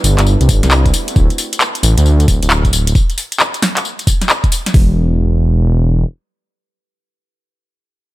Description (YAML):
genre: UK garage, two-step garage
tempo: 134 BPM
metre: 4/4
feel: swing 64% on 16ths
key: unclear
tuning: A4 = 442 Hz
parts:
  - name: warm analog pad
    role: sustained chords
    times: 0.0-1.2 s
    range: G3 to F#4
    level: -26 LUFS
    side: right 1 dB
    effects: wide subtle chorus, sidechain pumping
  - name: dark detuned saw bass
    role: bass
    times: 0.0-6.0 s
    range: D1 to D2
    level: -11 LUFS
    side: equal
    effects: none
  - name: garage drum kit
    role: drums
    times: 0.0-4.7 s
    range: handclaps, hi-hat, snare drum, tambourine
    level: -16 LUFS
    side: left 1 dB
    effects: none
  - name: garage drum kit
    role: drums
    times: 0.5-4.9 s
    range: hi-hat, kick drum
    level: -13 LUFS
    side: equal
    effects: none
room: little or no reverb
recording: none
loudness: -11 LUFS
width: side -17 dB against mid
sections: 0.0-4.7 A section; 4.7-8.1 B section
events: drop 0.0-4.7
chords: 0.0 Cmaj7; 0.9 D9; 4.7 N.C.